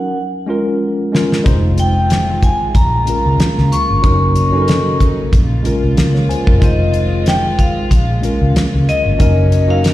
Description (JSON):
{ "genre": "lush 1970s-style soul", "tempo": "93 BPM", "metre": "4/4", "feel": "swing 54% on 16ths", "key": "unclear", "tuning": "A4 = 440 Hz", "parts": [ { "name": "vibraphone with medium hard mallets", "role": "melody", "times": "0.0-9.9 s", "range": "Eb5 to Db6", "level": "-19 LUFS", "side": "left 1 dB", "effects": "slapback echo" }, { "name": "mellow tine electric piano", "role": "accompaniment", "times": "0.0-9.9 s", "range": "Gb3 to Ab5", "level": "-19 LUFS", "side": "equal", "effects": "medium stereo tremolo" }, { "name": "damped 70s drum kit", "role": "drums", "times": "1.1-9.9 s", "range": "hi-hat, kick drum, snare drum", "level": "-14 LUFS", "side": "equal", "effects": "none" }, { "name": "warm studio string section", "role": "sustained chords", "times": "1.5-9.9 s", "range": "Db3 to F4", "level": "-25 LUFS", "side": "equal", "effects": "none" }, { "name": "vintage muted fingered electric bass", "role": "bass", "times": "1.5-9.9 s", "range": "F1 to Db2", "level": "-15 LUFS", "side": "equal", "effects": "none" } ], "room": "little or no reverb", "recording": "live gig heard through the venue's PA, recital hall reverb", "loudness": "-11 LUFS", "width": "side -15 dB against mid", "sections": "0.0-9.9 A section", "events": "drum fill 0.2-1.5; tine electric piano fill 5.7-6.6", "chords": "0.2 Bbm7; 1.5 Fm7; 2.7 Bbm7; 4.0 Gb6; 5.3 Bbm7; 6.6 Fm7; 7.9 Bbm7; 9.2 Gb6" }